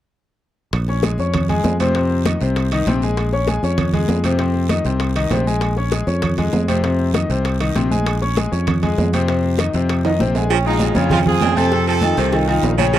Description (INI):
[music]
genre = latin, salsa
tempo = 197 BPM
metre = 4/4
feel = straight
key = Bb minor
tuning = A4 = 440 Hz
[part]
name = fingered electric bass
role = bass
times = 0.7-13.0 s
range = Bb1 to F2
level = -19 LUFS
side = right 1 dB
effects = none
[part]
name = bongos and cowbell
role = percussion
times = 0.7-13.0 s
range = none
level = -25 LUFS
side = left 6 dB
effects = none
[part]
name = congas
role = percussion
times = 0.7-13.0 s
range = none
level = -24 LUFS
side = right 2 dB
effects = none
[part]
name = guiro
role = percussion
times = 0.7-13.0 s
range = none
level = -35 LUFS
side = right 25 dB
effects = none
[part]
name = timbales and agogo bells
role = percussion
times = 0.7-13.0 s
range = none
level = -26 LUFS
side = right 8 dB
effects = none
[part]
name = bright concert grand piano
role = accompaniment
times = 0.9-13.0 s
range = C3 to Db6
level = -21 LUFS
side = left 4 dB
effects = none
[part]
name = clear horn section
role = melody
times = 10.5-13.0 s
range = F3 to A4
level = -21 LUFS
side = right 2 dB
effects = tape echo
[part]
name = edgy baritone saxophone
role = second line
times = 10.5-13.0 s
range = Db3 to F3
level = -23 LUFS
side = right 15 dB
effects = none
[sound]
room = little or no reverb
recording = dry, close 1970s-style studio recording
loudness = -16 LUFS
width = side -12 dB against mid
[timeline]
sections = 0.7-10.5 A section; 10.5-13.0 B section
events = drum fill 10.0-10.5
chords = 0.7 Bbm7; 2.0 F5; 3.2 Bbm7; 4.4 F5; 5.6 Bbm7; 6.8 F5; 8.1 Bbm7; 9.3 F5; 10.5 Bbm7; 11.7 F7